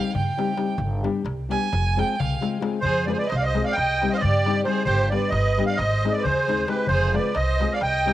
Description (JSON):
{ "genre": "balkan folk, Balkan wedding band", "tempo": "265 BPM (eighths)", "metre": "9/8", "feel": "straight", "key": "F dorian sharp4", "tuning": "A4 = 443 Hz", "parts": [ { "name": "rich violin", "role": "second line", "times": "0.0-8.1 s", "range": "G4 to Ab5", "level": "-28 LUFS", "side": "right 6 dB", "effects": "cassette tape" }, { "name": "nylon-string guitar", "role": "accompaniment", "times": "0.0-8.1 s", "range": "G3 to Ab4", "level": "-27 LUFS", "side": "left 6 dB", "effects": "cassette tape" }, { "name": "upright bass", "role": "bass", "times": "0.1-8.1 s", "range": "F1 to G2", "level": "-25 LUFS", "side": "equal", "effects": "none" }, { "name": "darbuka", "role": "percussion", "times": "0.1-8.1 s", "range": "none", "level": "-32 LUFS", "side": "left 4 dB", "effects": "none" }, { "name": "musette accordion", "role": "melody", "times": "2.8-8.1 s", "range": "B4 to G5", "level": "-23 LUFS", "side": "right 1 dB", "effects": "cassette tape" } ], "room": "light reverb", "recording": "home recording on cassette", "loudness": "-20 LUFS", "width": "side -14 dB against mid", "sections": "0.0-2.8 A section; 2.8-8.1 B section", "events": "violin solo 0.0-2.8", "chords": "0.0 Cm; 0.8 G; 1.7 Fm; 3.7 Cm; 4.9 G; 5.8 Ab; 6.9 Fm" }